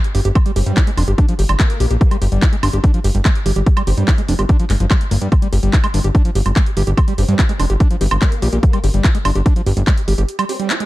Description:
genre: psychedelic trance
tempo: 145 BPM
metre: 4/4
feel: straight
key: G phrygian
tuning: A4 = 440 Hz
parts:
  - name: big-room dance drum kit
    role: drums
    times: 0.0-10.9 s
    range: handclaps, hi-hat, woodblock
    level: -23 LUFS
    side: right 1 dB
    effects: overdrive
  - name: screaming distorted acid line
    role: riff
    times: 0.1-10.8 s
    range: F3 to G4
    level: -23 LUFS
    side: moving between left 6 dB and right 7 dB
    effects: distortion, chorus, auto-pan, sidechain pumping, digital delay
  - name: fat analog bass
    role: bass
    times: 0.1-10.2 s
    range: F1 to G2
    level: -15 LUFS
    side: equal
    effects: none
  - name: electronic kick drum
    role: drums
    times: 0.4-10.0 s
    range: none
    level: -14 LUFS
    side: equal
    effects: overdrive
  - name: formant-sweep wobble bass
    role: second line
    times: 0.6-4.0, 7.2-10.7 s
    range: Bb3 to C4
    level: -33 LUFS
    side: left 2 dB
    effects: ensemble chorus, sidechain pumping, high-pass filter, dub echo
room: little or no reverb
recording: dark, warm production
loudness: -13 LUFS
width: side -17 dB against mid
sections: 0.0-10.9 A section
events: break 10.3-10.9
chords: 0.0 G5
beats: | 0.35 0.77 1.18 1.60 | 2.01 2.42 2.84 3.25 | 3.67 4.08 4.49 4.91 | 5.32 5.73 6.15 6.56 | 6.97 7.39 7.80 8.22 | 8.63 9.04 9.46 9.87 | 10.29 10.70

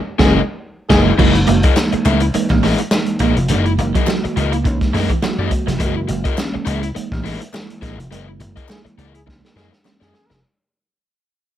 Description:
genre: funk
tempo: 104 BPM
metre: 4/4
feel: swing 56% on 16ths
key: F# mixolydian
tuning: A4 = 440 Hz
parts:
  - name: clear trombone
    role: second line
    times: 0.2-1.0, 8.7-10.4 s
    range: G#4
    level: -22 LUFS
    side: right 1 dB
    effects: none
  - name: crunchy overdriven guitar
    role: accompaniment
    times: 0.2-10.3 s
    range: E4 to E5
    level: -22 LUFS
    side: left 8 dB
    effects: none
  - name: mellow tine electric piano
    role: stabs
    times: 0.2-10.3 s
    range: E3 to F#4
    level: -21 LUFS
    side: right 3 dB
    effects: medium stereo tremolo
  - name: vintage slap bass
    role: bass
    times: 0.2-10.4 s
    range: E#1 to F#2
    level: -19 LUFS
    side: equal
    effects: none
  - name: crunchy breakbeat drum kit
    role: drums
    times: 0.2-10.4 s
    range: crash cymbal, hi-hat, kick drum, snare drum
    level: -19 LUFS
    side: equal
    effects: none
  - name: electric guitar at the edge of break-up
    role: riff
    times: 1.2-5.8 s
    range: E3 to A#3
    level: -22 LUFS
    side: right 7 dB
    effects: vibrato effect
  - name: group handclap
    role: percussion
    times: 1.8-10.0 s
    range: none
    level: -31 LUFS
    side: left 5 dB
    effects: none
room: light reverb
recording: none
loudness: -14 LUFS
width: side -11 dB against mid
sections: 0.0-1.2 A section; 1.2-10.4 B section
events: band accent 0.0-1.2, 8.1-10.4; fade-out 1.2-10.4; break 5.8-10.4; drum fill 9.3-10.4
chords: 0.0 F#13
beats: 0.03 0.61 | 1.19 1.76 2.34 2.92 | 3.50 4.07 4.65 5.23 | 5.80 6.38 6.96 7.54 | 8.12 8.69 9.27 9.85

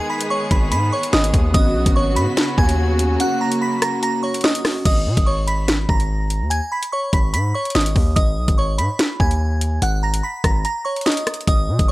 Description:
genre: hip hop, drill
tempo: 145 BPM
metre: 4/4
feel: half-time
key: G# minor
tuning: A4 = 440 Hz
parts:
  - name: glassy synth bell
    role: melody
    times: 0.0-11.9 s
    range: C#5 to B6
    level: -23 LUFS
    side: right 1 dB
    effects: chorus, analog delay
  - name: glassy digital keys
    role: accompaniment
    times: 0.0-4.9 s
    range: A#3 to G#4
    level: -25 LUFS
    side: right 1 dB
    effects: chorus
  - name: clear symphonic string section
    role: sustained chords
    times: 0.0-4.8 s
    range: C#3 to G#4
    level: -26 LUFS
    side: left 1 dB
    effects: none
  - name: drill drum kit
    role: drums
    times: 0.2-11.9 s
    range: crash cymbal, hi-hat, kick drum, rim click, snare drum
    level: -18 LUFS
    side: equal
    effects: none
  - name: hard-hitting 808-style bass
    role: bass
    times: 0.5-11.9 s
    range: G#1 to B2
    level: -20 LUFS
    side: equal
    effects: none
room: digital ambience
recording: dry, gritty hardware recording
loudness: -16 LUFS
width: side -18 dB against mid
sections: 0.0-4.9 A section; 4.9-11.9 B section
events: break 3.2-4.9; kick muted 10.6-11.5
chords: 0.0 G#m; 1.5 Bsus2/G#; 3.2 F#; 4.9 G#m; 9.8 F#/G# (rootless)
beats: 0.30 0.72 1.13 | 1.54 1.96 2.37 2.79 | 3.20 3.61 4.03 4.44 | 4.86 5.27 5.68 6.10 | 6.51 6.92 7.34 7.75 | 8.16 8.58 8.99 9.41 | 9.82 10.23 10.65 11.06 | 11.47 11.89

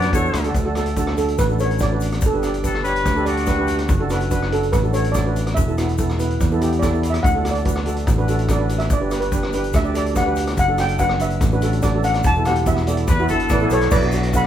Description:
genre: calypso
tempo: 144 BPM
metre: 4/4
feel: straight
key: D major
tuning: A4 = 436 Hz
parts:
  - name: steel pan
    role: melody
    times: 0.0-14.5 s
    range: A4 to B5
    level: -23 LUFS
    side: right 1 dB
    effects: none
  - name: breathy trumpet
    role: second line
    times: 0.0-4.1, 13.1-13.9 s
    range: F#4 to D5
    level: -24 LUFS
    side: left 3 dB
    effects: none
  - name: steel pan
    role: accompaniment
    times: 0.0-14.5 s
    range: B3 to D5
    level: -23 LUFS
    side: right 1 dB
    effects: none
  - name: fingered electric bass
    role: bass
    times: 0.0-14.5 s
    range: E1 to F#2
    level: -22 LUFS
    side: equal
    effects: none
  - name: street-band drum kit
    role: drums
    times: 0.0-14.5 s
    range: crash cymbal, hi-hat, kick drum, rim click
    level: -23 LUFS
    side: equal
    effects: none
  - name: egg shaker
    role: percussion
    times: 0.0-14.4 s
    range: none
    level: -38 LUFS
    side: left 6 dB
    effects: none
room: moderate large studio reverb, RT60 1.2 s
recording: band playing live in one room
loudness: -17 LUFS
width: side -10 dB against mid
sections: 0.6-13.9 A section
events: steel pan solo 0.6-13.9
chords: 0.0 Dmaj7; 0.6 D; 2.2 Gmaj7; 3.9 D/F#; 5.6 Asus2/E; 7.2 D; 8.9 Gmaj7; 10.6 D/F#; 12.2 Asus2/E; 13.9 Bm7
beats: 0.14 | 0.55 0.97 1.39 1.81 | 2.23 2.65 3.06 3.48 | 3.90 4.32 4.74 5.16 | 5.57 5.99 6.41 6.83 | 7.24 7.66 8.08 8.49 | 8.91 9.33 9.75 10.16 | 10.58 11.00 11.41 11.83 | 12.25 12.67 13.08 13.50 | 13.92 14.33

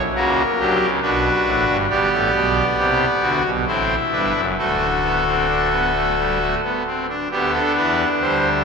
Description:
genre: classical, baroque-style 4-part fugue for pipe organ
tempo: 67 BPM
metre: 3/4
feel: straight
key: G major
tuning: A4 = 439 Hz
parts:
  - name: pipe organ, trumpet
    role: solo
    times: 0.0-8.6 s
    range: D1 to D5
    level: -16 LUFS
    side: equal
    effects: none
room: wet cathedral reverb, RT60 4.2 s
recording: none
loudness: -16 LUFS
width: side -5 dB against mid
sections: 0.0-7.3 A section; 7.3-8.6 B section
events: none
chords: 0.0 F#; 1.0 Bm; 1.9 G; 3.7 Am; 4.6 D; 7.3 G/D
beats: 0.14 1.02 | 1.89 2.77 3.67 | 4.58 5.50 6.41 | 7.32 8.22

